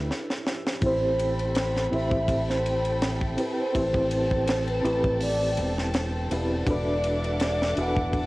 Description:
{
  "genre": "trip hop",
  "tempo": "82 BPM",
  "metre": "4/4",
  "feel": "swing 54% on 16ths",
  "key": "A dorian",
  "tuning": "A4 = 439 Hz",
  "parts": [
    { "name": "mellow reed electric piano", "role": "accompaniment", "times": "0.0-8.3 s", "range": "C4 to C5", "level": "-30 LUFS", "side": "equal", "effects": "tremolo, cassette tape, plate reverb" },
    { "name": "dark chamber violin section", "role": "sustained chords", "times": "0.0-8.3 s", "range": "C4 to D6", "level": "-34 LUFS", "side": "equal", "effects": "vintage 12-bit sampler grit, cassette tape, plate reverb" },
    { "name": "fingered electric bass", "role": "bass", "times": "0.0-8.3 s", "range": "E1 to A1", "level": "-29 LUFS", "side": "equal", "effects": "none" },
    { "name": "tight funk drum kit", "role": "drums", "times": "0.1-8.3 s", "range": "hi-hat, kick drum, ride cymbal, snare drum", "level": "-30 LUFS", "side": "equal", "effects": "cassette tape" },
    { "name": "pure breathy sine lead", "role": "melody", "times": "0.8-8.3 s", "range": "B4 to F#5", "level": "-28 LUFS", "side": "equal", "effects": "chorus, tape echo" }
  ],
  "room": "light reverb",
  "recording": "home recording on cassette",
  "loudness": "-23 LUFS",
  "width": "side -20 dB against mid",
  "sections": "0.8-8.3 A section",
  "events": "drum fill 0.1-0.8",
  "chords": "0.0 G69 (rootless); 0.8 Am9; 6.7 E9sus4",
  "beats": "0.09 | 0.82 1.56 2.29 3.02 | 3.75 4.48 5.22 5.95 | 6.68 7.41 8.14"
}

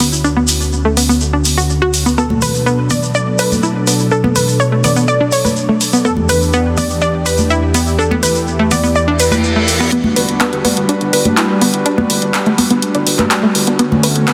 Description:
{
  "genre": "progressive house",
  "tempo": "124 BPM",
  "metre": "4/4",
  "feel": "straight",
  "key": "unclear",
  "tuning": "A4 = 441 Hz",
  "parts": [
    { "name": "warm analog pad", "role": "sustained chords", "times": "0.0-14.3 s", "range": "D2 to B4", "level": "-19 LUFS", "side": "equal", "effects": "chorus" },
    { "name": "analog pluck", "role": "arpeggios", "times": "0.0-14.3 s", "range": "A3 to B4", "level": "-19 LUFS", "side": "equal", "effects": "chorus, tape echo" },
    { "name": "house drum kit", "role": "drums", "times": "0.0-14.3 s", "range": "handclaps, hi-hat", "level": "-20 LUFS", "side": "equal", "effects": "overdrive" },
    { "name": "tube shaker", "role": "percussion", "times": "0.0-9.9 s", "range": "none", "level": "-24 LUFS", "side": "equal", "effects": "none" },
    { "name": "unison pluck", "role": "melody", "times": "2.2-9.6 s", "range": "A4 to D5", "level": "-21 LUFS", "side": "equal", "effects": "tape echo" },
    { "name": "congas", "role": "percussion", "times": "2.3-14.0 s", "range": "none", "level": "-23 LUFS", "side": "equal", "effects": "none" },
    { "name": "reverse cymbal", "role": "sound effects", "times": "9.2-9.9 s", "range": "none", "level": "-26 LUFS", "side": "equal", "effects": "none" },
    { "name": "round analog bass", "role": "bass", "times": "10.2-14.3 s", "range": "G1 to G2", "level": "-26 LUFS", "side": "equal", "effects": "high-pass filter" }
  ],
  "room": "light reverb, digital ambience",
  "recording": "dense, heavily limited modern master",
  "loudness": "-14 LUFS",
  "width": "mono",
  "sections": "0.0-9.9 A section; 9.9-14.3 B section",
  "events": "filter sweep on synth pluck 0.0-9.9, 9.9-14.3; filter sweep on analog synth pad 0.0-9.9; reverse cymbal 9.2-9.9; build-up 9.9-14.3",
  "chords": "0.0 Dmaj7; 2.2 Bm7; 6.1 Em7; 9.9 Gmaj7; 13.8 Dmaj7",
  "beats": "| 0.24 0.73 1.21 1.70 | 2.18 2.66 3.15 3.63 | 4.12 4.60 5.08 5.57 | 6.05 6.54 7.02 7.50 | 7.99 8.47 8.95 9.44 | 9.92 10.41 10.89 11.37 | 11.86 12.34 12.82 13.31 | 13.79 14.28"
}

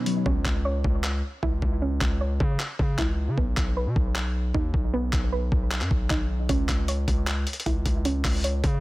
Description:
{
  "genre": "hip hop, trap",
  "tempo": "154 BPM",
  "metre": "4/4",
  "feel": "half-time",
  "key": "C# minor",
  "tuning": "A4 = 440 Hz",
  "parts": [
    { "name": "soft round pluck", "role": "arpeggios", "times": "0.0-8.8 s", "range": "B3 to C#5", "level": "-32 LUFS", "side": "right 3 dB", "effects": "chorus, low-pass filter, tape echo" },
    { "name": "lo-fi sampler-style drum kit", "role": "drums", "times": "0.1-8.7 s", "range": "handclaps, hi-hat, kick drum", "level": "-26 LUFS", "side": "equal", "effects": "overdrive" },
    { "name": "hard-hitting 808-style bass", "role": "bass", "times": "0.3-8.8 s", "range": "B1 to C#3", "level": "-27 LUFS", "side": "equal", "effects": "none" }
  ],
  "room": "little or no reverb",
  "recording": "dense, heavily limited modern master",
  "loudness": "-23 LUFS",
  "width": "side -19 dB against mid",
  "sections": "0.3-8.8 A section",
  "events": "break 0.0; hi-hats muted 0.3-6.5",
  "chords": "0.3 C#m; 3.4 B; 6.5 C#m",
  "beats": "| 0.26 0.65 1.04 1.43 | 1.82 2.21 2.60 2.99 | 3.38 3.77 4.16 4.54 | 4.93 5.32 5.71 6.10 | 6.49 6.88 7.27 7.66 | 8.05 8.44"
}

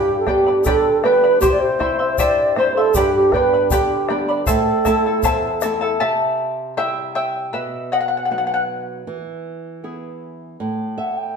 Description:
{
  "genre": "andean folk, Andean ensemble",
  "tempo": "78 BPM",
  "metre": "2/4",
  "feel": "straight",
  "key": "unclear",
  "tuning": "A4 = 440 Hz",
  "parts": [
    { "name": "mellow large quena", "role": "melody", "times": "0.0-5.6, 11.0-11.4 s", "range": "G4 to G5", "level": "-16 LUFS", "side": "right 2 dB", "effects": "none" },
    { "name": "charango", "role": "accompaniment", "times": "0.0-8.6 s", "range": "E4 to C6", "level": "-21 LUFS", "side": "left 2 dB", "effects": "none" },
    { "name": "flamenco guitar", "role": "accompaniment", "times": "0.0-11.4 s", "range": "E2 to E5", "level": "-26 LUFS", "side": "right 2 dB", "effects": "none" },
    { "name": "bombo", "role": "percussion", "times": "0.3-5.8 s", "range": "none", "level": "-26 LUFS", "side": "left 2 dB", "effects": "none" },
    { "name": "egg shaker", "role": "percussion", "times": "0.6-5.8 s", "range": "none", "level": "-31 LUFS", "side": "left 5 dB", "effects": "none" }
  ],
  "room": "wet stone room reverb, RT60 1.3 s",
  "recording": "band playing live in one room",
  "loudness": "-16 LUFS",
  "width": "side -6 dB against mid",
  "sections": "0.0-6.0 A section; 6.0-11.4 B section",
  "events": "charango solo 6.0-11.4; nylon-string guitar fill 10.6-11.4",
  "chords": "0.0 G; 1.4 C; 2.9 G; 4.5 Am; 6.0 C; 7.5 B; 9.1 E; 10.6 A5",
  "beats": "0.65 | 1.42 2.18 | 2.95 3.71 | 4.48 5.24 | 6.01 6.77 | 7.54 8.30 | 9.07 9.83 | 10.60 11.36"
}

